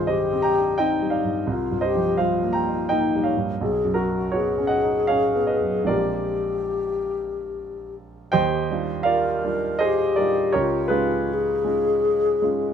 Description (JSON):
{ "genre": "classical, impressionist duo for alto flute and grand piano", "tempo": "72-87 BPM", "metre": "3/4", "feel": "rubato", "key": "unclear", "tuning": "A4 = 440 Hz", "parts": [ { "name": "mellow hollow alto flute", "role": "melody", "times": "0.0-12.7 s", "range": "Eb4 to Bb4", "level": "-23 LUFS", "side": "left 5 dB", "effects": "none" }, { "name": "warm grand piano", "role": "accompaniment", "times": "0.0-12.7 s", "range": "Bb1 to Bb5", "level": "-23 LUFS", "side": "right 4 dB", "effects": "none" } ], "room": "moderate studio reverb, RT60 0.8 s", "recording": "close, detailed microphones", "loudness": "-20 LUFS", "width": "side -8 dB against mid", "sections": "0.0-8.3 A section; 8.3-12.7 B section", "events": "none", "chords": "0.0 Cmadd9; 1.5 Eb69/C; 3.6 Badd9; 5.9 Bb13; 8.3 Ebmaj9; 10.6 Db9", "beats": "0.10 0.80 | 1.50 2.20 2.91 | 3.62 4.35 5.11 | 5.89 6.71 7.53 | 8.34 9.08 9.82 | 10.56 11.29 12.03" }